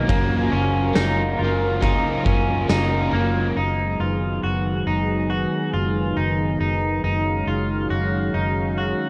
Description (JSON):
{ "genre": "dream pop", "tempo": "69 BPM", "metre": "4/4", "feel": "straight", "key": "unclear", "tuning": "A4 = 440 Hz", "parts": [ { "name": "crunchy overdriven guitar", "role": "accompaniment", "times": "0.0-3.6 s", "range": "F#3 to A#4", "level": "-30 LUFS", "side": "equal", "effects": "tremolo, analog chorus" }, { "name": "lush unison pad", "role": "sustained chords", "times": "0.0-9.1 s", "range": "C#3 to E#5", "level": "-27 LUFS", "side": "equal", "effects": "chorus" }, { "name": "electric guitar at the edge of break-up", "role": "arpeggios", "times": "0.0-9.1 s", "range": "A#3 to F#4", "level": "-28 LUFS", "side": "equal", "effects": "subtle chorus, tape echo" }, { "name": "vintage muted fingered electric bass", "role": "bass", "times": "0.0-8.9 s", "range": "F#1", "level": "-27 LUFS", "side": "equal", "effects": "none" }, { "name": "oversized low-tuned drum kit", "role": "drums", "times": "0.1-2.9 s", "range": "kick drum, ride cymbal, snare drum, tambourine", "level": "-27 LUFS", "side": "equal", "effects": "none" } ], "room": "light reverb, studio reverb", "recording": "worn, warbling old tape, cassette tape, warbly pitch drift", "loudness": "-22 LUFS", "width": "mono", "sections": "0.0-3.6 A section; 3.6-9.1 B section", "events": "none", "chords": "0.1 F#maj7; 3.6 G#m7/F#; 7.0 D#m11/F#" }